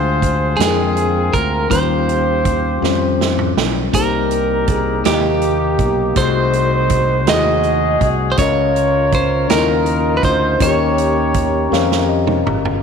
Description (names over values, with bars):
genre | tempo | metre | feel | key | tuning
slow gospel | 54 BPM (dotted quarters) | 6/8 | straight | unclear | A4 = 440 Hz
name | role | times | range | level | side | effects
clean electric guitar | melody | 0.0-12.4 s | G4 to Eb5 | -20 LUFS | right 4 dB | slapback echo
clear horn section | melody | 0.0-12.5 s | Bb3 to Eb5 | -20 LUFS | left 1 dB | slapback echo
mellow tine electric piano | accompaniment | 0.0-12.8 s | C3 to Bb5 | -20 LUFS | left 10 dB | medium stereo tremolo
modern bright fingered electric bass | bass | 0.0-12.8 s | G1 to F2 | -20 LUFS | right 1 dB | none
swinging big-band drum kit | drums | 0.2-12.8 s | hi-hat, kick drum, snare drum, toms | -20 LUFS | right 5 dB | none
room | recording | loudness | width
moderate echo chamber reverb, RT60 2.5 s | 1960s-style stereo | -13 LUFS | side -6 dB against mid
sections
0.0-12.8 A section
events
drum fill 2.8-3.9, 11.7-12.8; tine electric piano fill 11.7-12.8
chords
0.0 Bb13/D; 1.7 Eb13; 3.9 Cm7; 6.2 Ab7b9/C; 8.4 Db69; 10.6 Eb7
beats
0.59 | 1.71 2.82 | 3.94 5.05 | 6.16 7.28 | 8.39 9.50 | 10.61 11.72